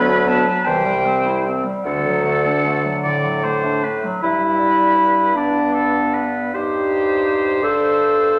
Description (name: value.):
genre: classical, slow romantic movement for wind quintet.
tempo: 48-58 BPM (dotted quarters).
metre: 6/8.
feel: rubato.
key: G major.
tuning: A4 = 438 Hz.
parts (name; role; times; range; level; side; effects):
concert flute; melody; 0.0-8.4 s; B4 to B5; -28 LUFS; equal; none.
clear oboe; second line; 0.0-8.4 s; A4 to D5; -26 LUFS; equal; none.
clear French horn; accompaniment; 0.0-8.4 s; D3 to Eb4; -28 LUFS; equal; none.
mellow clarinet; accompaniment; 0.0-8.4 s; D3 to A4; -21 LUFS; equal; none.
clear bassoon; bass; 0.0-8.4 s; C2 to A2; -25 LUFS; equal; none.
room: wet recital hall reverb, RT60 1.6 s.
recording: none.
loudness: -18 LUFS.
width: mono.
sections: 0.0-4.2 A section; 4.2-8.4 B section.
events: none.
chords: 0.0 Bm/D; 0.7 C; 1.9 D; 4.2 G; 6.5 Cm/G; 7.6 D5/G.